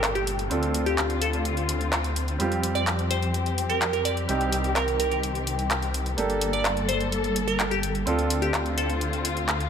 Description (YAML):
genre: EDM, festival progressive house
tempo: 127 BPM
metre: 4/4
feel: straight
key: G minor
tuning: A4 = 440 Hz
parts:
  - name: glassy wavetable pluck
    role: melody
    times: 0.0-9.4 s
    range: G4 to D5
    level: -29 LUFS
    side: right 1 dB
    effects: chorus, cassette tape, ping-pong delay
  - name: warm baby grand piano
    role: accompaniment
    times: 0.0-9.7 s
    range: G3 to A4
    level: -30 LUFS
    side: right 4 dB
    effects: none
  - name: muted studio string section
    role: sustained chords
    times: 0.0-9.7 s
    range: Bb2 to A4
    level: -30 LUFS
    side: left 3 dB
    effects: low-pass filter
  - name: wide detuned saw bass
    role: bass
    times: 0.0-9.7 s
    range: G1 to F2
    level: -29 LUFS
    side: left 1 dB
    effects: chorus
  - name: big-room dance drum kit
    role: drums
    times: 0.0-9.7 s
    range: handclaps, hi-hat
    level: -29 LUFS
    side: equal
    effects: none
  - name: downlifter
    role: sound effects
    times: 0.0-2.4 s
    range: none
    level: -41 LUFS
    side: left 1 dB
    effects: none
room: light reverb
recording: none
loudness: -23 LUFS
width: side -7 dB against mid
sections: 0.0-9.7 A section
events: none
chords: 0.0 Gmadd9; 0.5 Dm7; 2.4 Fsus2; 4.3 Cm; 6.2 Gmadd9; 8.1 Dm7